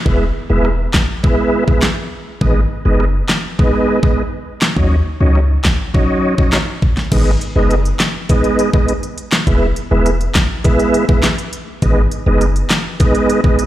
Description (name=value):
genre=dancehall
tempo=102 BPM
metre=4/4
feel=straight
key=G# minor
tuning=A4 = 441 Hz
part: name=tonewheel organ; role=accompaniment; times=0.1-13.6 s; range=F#3 to E4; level=-17 LUFS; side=right 1 dB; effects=chorus vibrato, fast rotary speaker, sidechain pumping
part: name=warm 808-style bass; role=bass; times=0.1-12.6 s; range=E1 to D#2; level=-14 LUFS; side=equal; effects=none
part: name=pop drum kit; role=drums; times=0.1-13.7 s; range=crash cymbal, handclaps, hi-hat, kick drum, rim click, snare drum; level=-15 LUFS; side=equal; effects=none
room=light reverb, digital ambience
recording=played on a big sound system in a bare room, large studio reverb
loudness=-12 LUFS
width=side -14 dB against mid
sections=0.0-7.1 A section; 7.1-13.7 B section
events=none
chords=0.1 E; 2.4 G#m; 4.8 D#m7; 7.1 G#m; 9.5 E; 11.8 G#m